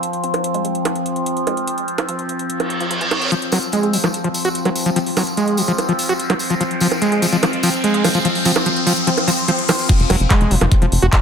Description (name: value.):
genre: psychedelic trance.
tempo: 146 BPM.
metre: 4/4.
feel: straight.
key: F minor.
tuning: A4 = 441 Hz.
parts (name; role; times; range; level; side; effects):
overtone-sweeping drone; sustained chords; 0.0-11.2 s; F3 to C4; -22 LUFS; left 1 dB; chorus, built-in reverb, sidechain pumping.
drum and bass drum kit; drums; 0.0-11.2 s; bongos, crash cymbal, handclaps, hi-hat; -22 LUFS; right 3 dB; none.
resonant blip pluck; second line; 0.2-10.6 s; F3 to C4; -29 LUFS; right 3 dB; chorus, sidechain pumping, high-pass filter, tape echo.
reverse cymbal and riser; sound effects; 2.6-9.9 s; none; -24 LUFS; equal; none.
overdriven acid bass; riff; 3.3-11.1 s; F3 to Gb4; -19 LUFS; equal; distortion, auto-pan, sidechain pumping, tape echo.
tambourine; percussion; 3.3-9.9 s; none; -28 LUFS; left 1 dB; none.
electronic kick drum; drums; 9.9-11.2 s; none; -14 LUFS; equal; none.
tight sequencer bass; bass; 10.0-11.1 s; F1; -16 LUFS; equal; none.
room: moderate lush hall reverb, RT60 1.9 s.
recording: none.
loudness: -15 LUFS.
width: side -7 dB against mid.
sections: 0.0-3.3 A section; 3.3-9.9 B section; 9.9-11.2 C section.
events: filter sweep on synth drone 0.0-3.3; reverse cymbal 2.6-3.3; build-up 3.3-9.9; riser 3.3-9.9; drop 9.9-11.2.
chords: 0.0 F5.